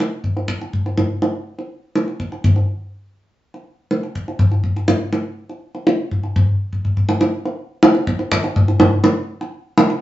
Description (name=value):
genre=gamelan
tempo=123 BPM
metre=4/4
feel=straight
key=none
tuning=none
part: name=kendang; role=percussion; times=0.0-10.0 s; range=none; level=-16 LUFS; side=equal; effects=none
room=wet studio reverb, RT60 0.6 s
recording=band playing live in one room, nothing above 7.7 kHz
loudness=-16 LUFS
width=side -14 dB against mid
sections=0.0-10.0 A section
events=drum fill 6.7-7.3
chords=none